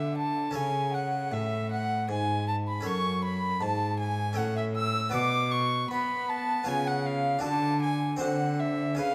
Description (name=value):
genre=classical, baroque-style sonata movement with continuo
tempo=78 BPM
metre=3/4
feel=rubato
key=F# minor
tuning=A4 = 441 Hz
part: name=warm violin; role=melody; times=0.0-9.1 s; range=E5 to E6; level=-34 LUFS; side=equal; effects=none
part: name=baroque flute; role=second line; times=0.0-9.1 s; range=E5 to E6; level=-35 LUFS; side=equal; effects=none
part: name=harpsichord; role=accompaniment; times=0.0-9.1 s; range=F#2 to D5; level=-37 LUFS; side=equal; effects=none
part: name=rich cello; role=bass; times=0.0-9.1 s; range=F#2 to B3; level=-33 LUFS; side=equal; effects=none
room=moderate recital hall reverb, RT60 1.6 s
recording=none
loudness=-29 LUFS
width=mono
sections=0.0-9.1 A section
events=none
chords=0.0 A; 2.8 F#m; 4.4 A; 5.1 Bm; 6.7 C#7; 7.4 D; 8.2 D7